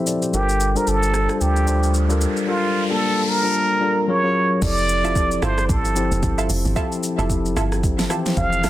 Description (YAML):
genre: amapiano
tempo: 112 BPM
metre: 4/4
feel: swing 58% on 16ths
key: unclear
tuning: A4 = 440 Hz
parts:
  - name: tine electric piano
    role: accompaniment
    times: 0.0-8.7 s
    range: E3 to A5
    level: -22 LUFS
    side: left 3 dB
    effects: low-pass filter
  - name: smooth R&B drum kit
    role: drums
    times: 0.1-8.7 s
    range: crash cymbal, hi-hat, kick drum, rim click, shaker, snare drum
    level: -25 LUFS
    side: equal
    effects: soft clipping on snare
  - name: trumpet with plunger mute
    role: melody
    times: 0.3-8.7 s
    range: F4 to F5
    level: -22 LUFS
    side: right 2 dB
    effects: low-pass filter, digital delay
  - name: warm sub bass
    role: bass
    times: 0.3-2.3 s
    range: G1 to D2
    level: -20 LUFS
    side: right 1 dB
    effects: none
  - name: riser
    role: sound effects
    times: 1.5-3.5 s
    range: none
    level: -29 LUFS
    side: left 1 dB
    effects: none
  - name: deep log drum bass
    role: bass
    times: 4.6-8.7 s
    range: F1 to A1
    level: -23 LUFS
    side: right 1 dB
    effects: none
  - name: punchy chord stab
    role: stabs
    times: 5.0-8.7 s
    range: E4 to A4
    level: -29 LUFS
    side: right 5 dB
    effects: chorus, digital delay
room: light reverb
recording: dense, heavily limited modern master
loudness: -17 LUFS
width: side -14 dB against mid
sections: 0.0-4.6 A section; 4.6-8.7 B section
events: filter sweep 0.0-4.6; riser 1.5-4.6; drop 4.6-8.7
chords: 0.3 Gm7; 4.1 Gbmaj7; 4.6 Fmaj7